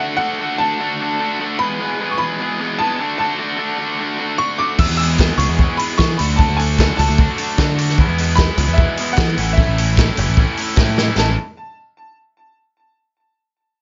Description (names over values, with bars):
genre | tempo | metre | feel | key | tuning
indie rock | 150 BPM | 4/4 | straight | A major | A4 = 440 Hz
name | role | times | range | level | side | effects
warm upright piano | melody | 0.0-11.4 s | E5 to E6 | -25 LUFS | equal | digital delay
raw garage guitar | riff | 0.0-11.3 s | E2 to G#4 | -23 LUFS | equal | overdrive
overdriven tonewheel organ | sustained chords | 4.8-11.4 s | F#3 to E5 | -35 LUFS | equal | none
picked electric bass | bass | 4.8-11.4 s | F#1 to E3 | -20 LUFS | equal | none
vintage drum kit | drums | 4.8-11.3 s | crash cymbal, hi-hat, kick drum, snare drum | -20 LUFS | equal | none
group handclap | percussion | 5.2-11.4 s | none | -32 LUFS | equal | none
room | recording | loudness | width
light reverb | nothing above 7.5 kHz | -17 LUFS | mono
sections
0.0-11.2 A section; 11.2-12.8 B section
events
drum fill 10.8-11.2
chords
0.0 D; 1.6 E; 3.0 D; 4.8 E; 6.2 D; 8.0 E; 9.4 Aadd9